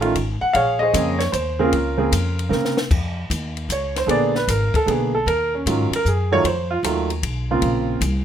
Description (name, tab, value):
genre	jazz piano trio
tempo	153 BPM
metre	3/4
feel	swing 67% on 8ths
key	Bb minor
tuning	A4 = 440 Hz
part	warm concert grand piano	melody	0.0-8.0 s	Db3 to Gb5	-19 LUFS	right 2 dB	none
part	upright bass	bass	0.0-8.2 s	G#1 to C3	-24 LUFS	equal	none
part	compact cocktail drum kit	drums	0.0-8.1 s	crash cymbal, hi-hat, kick drum, ride cymbal, snare drum	-26 LUFS	left 3 dB	none
room	light reverb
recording	minimal, uncompressed stereo recording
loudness	-18 LUFS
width	side -9 dB against mid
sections	0.0-2.9 A section; 2.9-8.2 B section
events	drum fill 2.5-2.9; grand piano solo 2.9-8.2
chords	0.0 F7alt; 0.5 Bbm9; 2.9 Dbadd9; 4.1 Bb7b9; 5.3 Ebm9; 6.4 F7(no3); 7.6 Bbmadd9